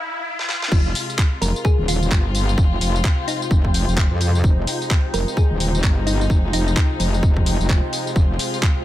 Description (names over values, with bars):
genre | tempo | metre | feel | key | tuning
bass house | 129 BPM | 4/4 | swing 59% on 16ths | F minor | A4 = 440 Hz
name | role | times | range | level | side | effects
riser | sound effects | 0.0-0.7 s | none | -28 LUFS | equal | none
garage drum kit | drums | 0.4-8.7 s | crash cymbal, handclaps, hi-hat, snare drum, tambourine | -26 LUFS | left 1 dB | high-pass filter on snare, high-pass filter on perc, high-pass filter on hats, high-pass filter on cymbals
dark chamber string section | sustained chords | 0.7-8.8 s | C3 to F4 | -29 LUFS | left 3 dB | sidechain pumping
metallic wobble bass | bass | 0.7-8.4 s | Eb1 to F2 | -20 LUFS | equal | chorus, tube saturation, sidechain pumping, high-pass filter
electronic kick drum | drums | 0.7-8.7 s | none | -17 LUFS | equal | high-pass filter on kick
granular cloud pad | texture | 0.7-8.8 s | F4 to G5 | -30 LUFS | equal | built-in reverb, sidechain pumping
thumb-piano-like synth pluck | melody | 1.4-6.7 s | Eb4 to Bb4 | -28 LUFS | left 1 dB | chorus, phaser, digital delay
room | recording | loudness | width
little or no reverb | high-pass filter | -17 LUFS | side -14 dB against mid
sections
0.7-8.8 A section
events
break 0.0-0.7; riser 0.0-0.7; drum fill 0.4-0.7; drop 0.7-8.8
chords
0.0 N.C.; 0.7 Fm